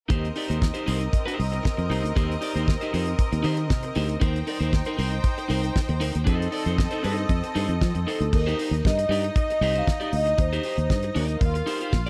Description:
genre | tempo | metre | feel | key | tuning
disco | 117 BPM | 4/4 | straight | Eb major | A4 = 440 Hz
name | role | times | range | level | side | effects
clear studio string section | second line | 0.1-12.1 s | C4 to G5 | -34 LUFS | equal | none
electric guitar at the edge of break-up | accompaniment | 0.1-12.1 s | Eb4 to D5 | -33 LUFS | equal | none
fingered electric bass | bass | 0.1-12.1 s | Bb1 to F3 | -28 LUFS | equal | none
damped 70s drum kit | drums | 0.1-12.1 s | crash cymbal, hi-hat, kick drum, snare drum | -28 LUFS | equal | none
vibraphone with soft mallets | melody | 8.1-11.9 s | A4 to F5 | -30 LUFS | equal | none
room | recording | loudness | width
small room ambience | dark, warm production | -25 LUFS | mono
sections
0.1-8.3 A section; 8.3-12.1 B section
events
none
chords
0.1 Eb6; 4.2 Cm7; 6.3 F7; 8.3 Eb6

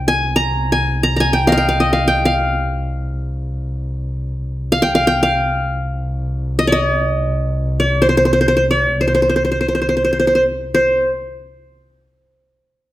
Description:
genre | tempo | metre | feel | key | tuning
Arabic maqam ensemble | free time | none | none | C maqam bayati | A4 = 440 Hz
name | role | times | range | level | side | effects
qanun | melody | 0.0-11.1 s | C5 to Bb5 | -15 LUFS | equal | none
dark double bass | drone | 0.0-10.8 s | C2 | -21 LUFS | equal | none
room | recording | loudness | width
moderate recital hall reverb, RT60 1.3 s | none | -14 LUFS | side -14 dB against mid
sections
0.0-10.8 A section; 10.8-12.9 B section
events
none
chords
none

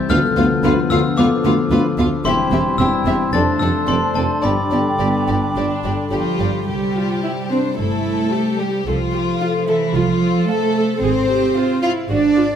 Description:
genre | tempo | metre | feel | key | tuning
cinematic, playful, whimsical film cue | 110 BPM | 4/4 | straight | C major | A4 = 440 Hz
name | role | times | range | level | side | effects
glockenspiel with brass mallets | melody | 0.0-6.4 s | A5 to A6 | -24 LUFS | left 3 dB | none
dark French horn section | sustained chords | 0.0-6.4 s | F3 to D4 | -23 LUFS | left 4 dB | none
concert harp | arpeggios | 0.0-12.6 s | G2 to C5 | -24 LUFS | left 5 dB | none
dark chamber violin section | melody | 0.1-12.0 s | D5 to F5 | -31 LUFS | left 3 dB | none
warm chamber violin section | second line | 0.1-12.6 s | E4 to F5 | -25 LUFS | left 4 dB | none
warm chamber viola section | accompaniment | 0.1-12.4 s | B3 to A4 | -24 LUFS | right 1 dB | none
mellow tuba | bass | 0.1-6.5 s | E1 to D2 | -26 LUFS | right 3 dB | none
warm chamber cello section | bass | 0.1-12.6 s | D2 to F4 | -21 LUFS | right 3 dB | none
warm chamber double bass section | bass | 0.1-12.5 s | E1 to D2 | -24 LUFS | right 4 dB | none
clear clarinet | second line | 0.6-6.4 s | D4 to F4 | -28 LUFS | left 1 dB | none
mellow hollow large flute ensemble | second line | 0.6-6.4 s | F5 to A5 | -26 LUFS | equal | none
warm cor anglais | second line | 0.6-6.4 s | B4 to D5 | -28 LUFS | right 2 dB | none
room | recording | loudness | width
moderate scoring stage reverb, RT60 1.5 s | none | -15 LUFS | side -8 dB against mid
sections
0.0-6.7 A section; 6.7-12.6 B section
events
none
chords
0.1 Bdim/D; 2.3 C/E; 3.3 Dm7/F; 4.4 G; 6.7 C; 8.9 F/C; 11.0 Fm/Ab

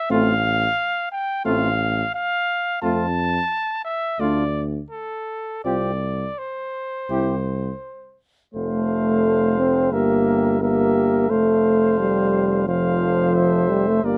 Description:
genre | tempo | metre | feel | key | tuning
classical, brass quintet | 79-89 BPM | 4/4 | rubato | F major | A4 = 440 Hz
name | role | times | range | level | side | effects
clear cornet | melody | 0.0-14.2 s | A4 to A5 | -28 LUFS | equal | none
warm trumpet | second line | 0.1-14.2 s | F4 to C5 | -30 LUFS | equal | none
mellow trombone | accompaniment | 0.1-14.2 s | F3 to C4 | -22 LUFS | equal | none
warm French horn | accompaniment | 0.1-14.2 s | C4 to A4 | -27 LUFS | equal | none
clear tuba | bass | 0.1-14.2 s | F1 to F2 | -28 LUFS | equal | none
room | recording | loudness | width
light reverb | close, detailed microphones | -21 LUFS | mono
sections
0.0-8.5 A section; 8.5-14.2 B section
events
none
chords
0.1 F/A; 2.8 F; 4.2 D5; 5.7 Csus4; 7.1 C; 8.5 F; 9.9 Edim/G; 11.3 F

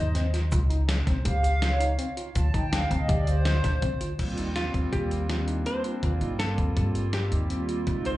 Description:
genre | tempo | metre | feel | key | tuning
progressive instrumental, band music in an uneven meter | 163 BPM | 5/4 | straight | Eb lydian | A4 = 443 Hz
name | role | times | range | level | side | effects
tine electric piano | arpeggios | 0.0-8.2 s | C4 to G4 | -37 LUFS | left 1 dB | overdrive, fast stereo tremolo, slapback echo, ping-pong delay
upright bass | bass | 0.0-8.2 s | Db2 to G2 | -26 LUFS | equal | none
dusty soul sampler-style drum kit | drums | 0.1-8.1 s | crash cymbal, hi-hat, kick drum, snare drum | -29 LUFS | equal | none
egg shaker | percussion | 0.2-4.1 s | none | -49 LUFS | right 3 dB | none
hollow soft pad | accompaniment | 1.1-8.2 s | G3 to A5 | -31 LUFS | right 1 dB | chorus, slapback echo
archtop guitar, miked and amplified | melody | 4.6-8.2 s | F4 to C5 | -34 LUFS | left 1 dB | slapback echo, ping-pong delay
room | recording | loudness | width
light reverb | live gig heard through the venue's PA, club reverb, nothing above 10.8 kHz | -24 LUFS | side -16 dB against mid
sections
0.0-4.2 A section; 4.2-8.2 B section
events
analog synth pad solo 0.0-4.2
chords
0.0 Eb5; 0.5 Dbmaj7; 2.4 Dm7; 4.2 Eb6

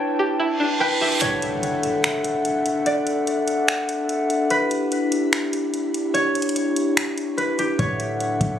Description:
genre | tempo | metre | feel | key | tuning
hip hop, atmospheric cloud-rap | 146 BPM | 4/4 | half-time | D major | A4 = 440 Hz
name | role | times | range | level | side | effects
concert harp | melody | 0.0-8.6 s | G4 to D5 | -26 LUFS | right 1 dB | low-pass filter, ping-pong delay
glass harmonica | sustained chords | 0.0-8.6 s | D4 to A5 | -22 LUFS | left 1 dB | sidechain pumping, low-pass filter
string-like resonator pluck | arpeggios | 0.0-1.2 s | D4 to G5 | -27 LUFS | right 1 dB | chorus, low-pass filter, ping-pong delay
reverse cymbal and impact | sound effects | 0.6-2.9 s | none | -27 LUFS | right 3 dB | none
smooth R&B drum kit | drums | 1.2-8.5 s | finger snaps, hi-hat, kick drum | -24 LUFS | equal | none
warm 808-style bass | bass | 7.8-8.6 s | D1 | -27 LUFS | equal | none
room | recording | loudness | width
light reverb, digital ambience | recorded on a phone in the room, studio reverb, compression | -19 LUFS | side -9 dB against mid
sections
0.0-1.2 A section; 1.2-8.6 B section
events
filter sweep 0.0-1.2; reverse cymbal 0.6-1.2; kick muted 1.2-7.8; impact 1.2-2.9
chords
0.0 Em7; 1.2 Dmaj9; 4.5 Em7; 7.8 Dmaj9

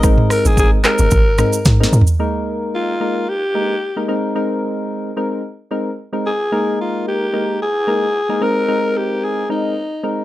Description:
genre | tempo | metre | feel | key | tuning
afrobeats | 111 BPM | 4/4 | swing 55% on 16ths | Eb major | A4 = 441 Hz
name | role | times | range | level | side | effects
breathy alto saxophone | melody | 0.0-10.2 s | Eb4 to Bb4 | -19 LUFS | left 1 dB | digital delay
soft electric-piano-like synth keys | accompaniment | 0.0-10.2 s | Ab3 to Bb4 | -20 LUFS | left 1 dB | chorus
deep log drum bass | bass | 0.0-2.0 s | G1 to Ab2 | -14 LUFS | equal | none
afro-pop drum kit | drums | 0.0-2.2 s | handclaps, hi-hat, kick drum, rim click, shaker, snare drum, toms | -15 LUFS | equal | none
room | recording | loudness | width
light reverb | none | -15 LUFS | side -15 dB against mid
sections
0.0-2.2 A section; 2.2-10.2 B section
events
drum fill 1.7-2.2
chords
0.0 Abadd9; 2.2 Ebsus4; 4.1 Abadd9; 6.5 Ebsus4; 8.4 Abadd9

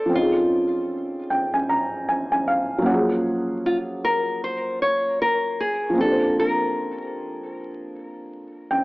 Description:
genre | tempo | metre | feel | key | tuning
hip hop | 77 BPM | 4/4 | swing 60% on 16ths | unclear | A4 = 440 Hz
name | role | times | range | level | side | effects
nylon-string guitar | melody | 0.0-8.7 s | F4 to Db5 | -23 LUFS | left 1 dB | low-pass filter, plate reverb, tape echo
felt-muted upright piano | accompaniment | 0.0-8.8 s | F3 to Bb5 | -23 LUFS | equal | low-pass filter
room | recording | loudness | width
moderate small room reverb, RT60 0.6 s | vinyl crackle, AM radio sound | -20 LUFS | side -22 dB against mid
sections
0.0-8.8 A section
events
felt piano fill 0.9-3.2, 8.3-8.8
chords
0.1 Dbmaj9; 2.9 Gbmaj9; 6.0 Bbadd9

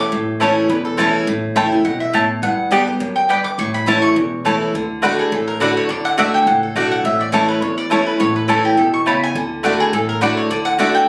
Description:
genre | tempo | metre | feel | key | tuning
bluegrass | 208 BPM | 4/4 | swing 54% on 8ths | A mixolydian | A4 = 440 Hz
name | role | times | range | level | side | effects
mandolin | melody | 0.0-11.1 s | G4 to D6 | -22 LUFS | equal | none
picked steel-string acoustic guitar | accompaniment | 0.0-11.1 s | E2 to G4 | -20 LUFS | equal | none
upright bass | bass | 0.1-10.9 s | E1 to E2 | -35 LUFS | equal | none
mandolin | stabs | 0.4-10.9 s | A3 to A5 | -21 LUFS | equal | none
room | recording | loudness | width
wet large studio reverb, RT60 0.9 s | recorded on a phone in the room, club reverb | -17 LUFS | mono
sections
0.0-4.7 A section; 4.7-11.1 B section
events
none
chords
0.0 A; 2.4 G; 3.6 A; 4.7 D; 7.0 A; 9.4 D

